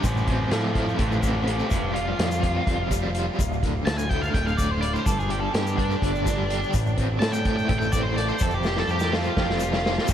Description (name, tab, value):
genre	psychedelic rock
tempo	251 BPM (eighths)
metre	7/8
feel	straight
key	unclear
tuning	A4 = 438 Hz
part	octave-fuzz lead guitar	melody	0.0-10.1 s	C4 to A5	-27 LUFS	equal	distortion, diffuse ambient delay
part	crunchy overdriven guitar	riff	0.0-10.1 s	D2 to A4	-28 LUFS	equal	tremolo
part	growling picked electric bass	bass	0.0-10.1 s	D1 to A2	-28 LUFS	equal	overdrive
part	vintage drum kit	drums	0.0-10.1 s	crash cymbal, hi-hat, kick drum, snare drum	-27 LUFS	equal	none
part	egg shaker	percussion	0.0-10.1 s	none	-42 LUFS	left 7 dB	none
room	moderate huge ambient reverb, RT60 7.4 s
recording	dreamy mix soaked in reverb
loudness	-21 LUFS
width	side -10 dB against mid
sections	0.0-10.1 A section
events	lead electric guitar solo 0.0-10.1; drum fill 8.6-10.1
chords	0.0 Am; 1.7 Fsus2; 3.4 Dsus2; 5.1 G5; 6.7 Am; 8.4 Fsus2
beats	| 0.04 0.28 0.52 0.76 1.00 1.24 1.47 | 1.71 1.95 2.19 2.43 2.67 2.91 3.15 | 3.39 3.63 3.87 4.11 4.34 4.58 4.82 | 5.06 5.30 5.54 5.78 6.02 6.26 6.50 | 6.73 6.97 7.21 7.45 7.69 7.93 8.17 | 8.41 8.64 8.88 9.12 9.36 9.60 9.84 | 10.08